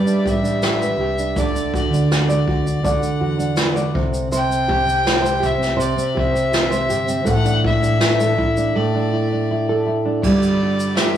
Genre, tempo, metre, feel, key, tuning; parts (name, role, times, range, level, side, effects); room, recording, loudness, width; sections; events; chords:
acoustic pop; 81 BPM; 4/4; straight; G major; A4 = 440 Hz
warm violin; melody; 0.0-11.2 s; D5 to G5; -23 LUFS; left 2 dB; tape echo
nylon-string guitar; accompaniment; 0.0-11.2 s; A2 to D5; -19 LUFS; right 1 dB
hollow-body short-scale fingered electric bass; bass; 0.0-11.2 s; G1 to E2; -26 LUFS; left 1 dB
jazz brush drum kit; drums; 0.1-11.1 s; crash cymbal, kick drum, shaker, snare drum; -22 LUFS; equal
moderate stone room reverb, RT60 1.0 s; rough rehearsal-room recording, warm saturation, small room ambience; -16 LUFS; side -10 dB against mid
0.0-10.2 A section
break 8.8-10.2
0.0 G; 1.4 D; 4.0 C; 7.3 Asus4; 10.2 G5